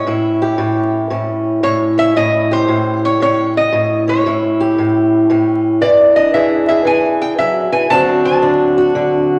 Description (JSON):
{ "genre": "acoustic country blues, solo or duo", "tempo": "115 BPM", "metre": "4/4", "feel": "swing 66% on 8ths", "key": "A mixolydian", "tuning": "A4 = 440 Hz", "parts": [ { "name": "lap resonator guitar", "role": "melody", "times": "0.0-8.7 s", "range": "C5 to A5", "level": "-17 LUFS", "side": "equal", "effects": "none" }, { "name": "fingerpicked swing-style acoustic guitar", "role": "accompaniment", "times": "0.0-9.4 s", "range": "A2 to G#4", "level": "-16 LUFS", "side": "equal", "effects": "none" } ], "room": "wet large studio reverb, RT60 1.5 s", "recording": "vinyl crackle", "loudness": "-14 LUFS", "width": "mono", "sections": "0.0-9.4 A section", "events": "none", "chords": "0.0 A7; 5.8 E7; 7.9 D7", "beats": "0.08 0.60 1.12 | 1.64 2.17 2.69 3.21 | 3.73 4.25 4.78 5.30 | 5.82 6.34 6.86 7.39 | 7.91 8.43 8.95" }